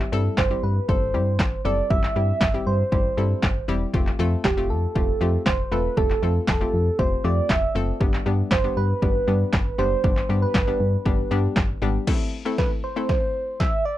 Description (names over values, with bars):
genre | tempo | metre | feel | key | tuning
dance-pop | 118 BPM | 4/4 | straight | A minor | A4 = 437 Hz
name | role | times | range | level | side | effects
hollow square pluck | accompaniment | 0.0-13.6 s | G3 to A4 | -28 LUFS | left 4 dB | chorus, sidechain pumping
solid FM bass | bass | 0.0-12.0 s | E1 to G2 | -24 LUFS | equal | sidechain pumping
punchy analog drum machine | drums | 0.0-13.7 s | crash cymbal, handclaps, kick drum, snare drum | -23 LUFS | equal | none
soft struck synth lead | melody | 0.4-14.0 s | G4 to E5 | -26 LUFS | right 3 dB | chorus, tape echo
room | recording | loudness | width
little or no reverb | dry, close 1970s-style studio recording | -20 LUFS | side -14 dB against mid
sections
0.0-12.1 A section; 12.1-14.0 B section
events
build-up 12.1-14.0; drum fill 12.1-14.0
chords
0.0 C; 3.9 Fadd9; 8.0 G; 12.1 Am